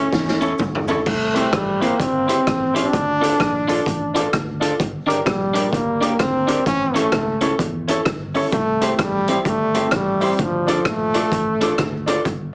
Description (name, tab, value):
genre	ska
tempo	129 BPM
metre	4/4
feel	swing 62% on 8ths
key	D minor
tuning	A4 = 440 Hz
part	brilliant trombone	melody	0.0-11.8 s	F3 to D4	-23 LUFS	equal	tape echo
part	electric guitar at the edge of break-up	accompaniment	0.0-12.2 s	C4 to D5	-26 LUFS	equal	none
part	semi-hollow electric guitar	riff	0.0-0.8 s	G2 to E3	-36 LUFS	equal	none
part	clear upright piano	stabs	0.0-12.2 s	C4 to Bb4	-27 LUFS	equal	none
part	fingered electric bass	bass	0.0-12.5 s	G1 to E2	-32 LUFS	equal	none
part	raw garage drum kit	drums	0.1-12.4 s	crash cymbal, hi-hat, kick drum, rim click, snare drum, toms	-26 LUFS	equal	none
part	cabasa	percussion	0.1-1.0 s	none	-48 LUFS	equal	none
room	moderate studio reverb, RT60 0.6 s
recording	heavily compressed radio sound, small speaker sound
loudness	-20 LUFS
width	mono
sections	0.0-1.1 A section; 1.1-12.5 A section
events	drum fill 0.1-1.1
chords	0.0 A; 1.1 C; 2.9 Dm; 4.8 Gm; 6.7 A; 8.5 C; 10.4 Dm